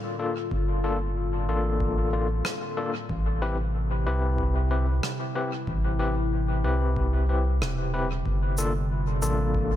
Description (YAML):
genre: ambient dub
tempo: 93 BPM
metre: 4/4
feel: swing 55% on 16ths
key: unclear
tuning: A4 = 439 Hz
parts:
  - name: warbly tape-like pad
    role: sustained chords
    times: 0.0-9.8 s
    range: A2 to F4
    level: -33 LUFS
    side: right 1 dB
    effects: chorus, built-in reverb
  - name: overdriven tine electric piano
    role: stabs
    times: 0.2-9.8 s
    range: Bb3 to B4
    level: -30 LUFS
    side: left 3 dB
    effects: fast tremolo, dub echo
  - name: round analog bass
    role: bass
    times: 0.5-9.8 s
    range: E1 to C2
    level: -26 LUFS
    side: equal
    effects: none
  - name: electronic kick drum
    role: drums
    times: 0.5-9.7 s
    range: none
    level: -32 LUFS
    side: equal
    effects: none
  - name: rim click and shaker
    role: drums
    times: 2.4-9.4 s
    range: none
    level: -36 LUFS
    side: equal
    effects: dub echo
room: studio reverb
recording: none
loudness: -24 LUFS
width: side -12 dB against mid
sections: 0.0-9.8 A section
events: none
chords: 0.0 Gm7; 3.1 Am7; 8.3 Gm7